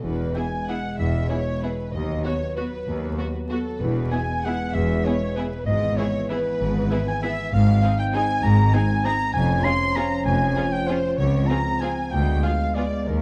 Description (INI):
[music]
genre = classical, orchestral ballroom waltz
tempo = 193 BPM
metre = 3/4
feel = uneven beats, rubato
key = E major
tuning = A4 = 438 Hz
[part]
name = dark clarinet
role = second line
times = 0.0-13.2 s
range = A4 to C6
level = -30 LUFS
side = equal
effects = none
[part]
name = warm symphonic violin section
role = second line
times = 0.0-13.2 s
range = A4 to C6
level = -36 LUFS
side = equal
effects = none
[part]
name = dark French horn section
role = sustained chords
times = 0.0-13.2 s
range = Eb3 to Db4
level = -32 LUFS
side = equal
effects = none
[part]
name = rich symphonic cello section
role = bass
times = 0.0-13.2 s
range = Db2 to G#2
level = -28 LUFS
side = equal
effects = none
[part]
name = rich symphonic double bass section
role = bass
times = 0.0-13.2 s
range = E1 to D#2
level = -28 LUFS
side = equal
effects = none
[part]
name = rich symphonic violin section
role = melody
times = 0.4-12.8 s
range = F#4 to G#4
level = -42 LUFS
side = equal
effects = none
[part]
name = rich symphonic viola section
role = accompaniment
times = 0.4-12.8 s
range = B3 to F#4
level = -34 LUFS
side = equal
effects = none
[sound]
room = moderate recital hall reverb, RT60 1.7 s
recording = vinyl crackle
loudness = -23 LUFS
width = mono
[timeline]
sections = 0.0-13.2 A section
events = none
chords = 0.0 E; 1.9 B/D#; 3.8 E; 5.7 E/G#; 7.5 Ab; 9.3 Db/F; 11.2 Dbmaj7; 12.1 Ddim7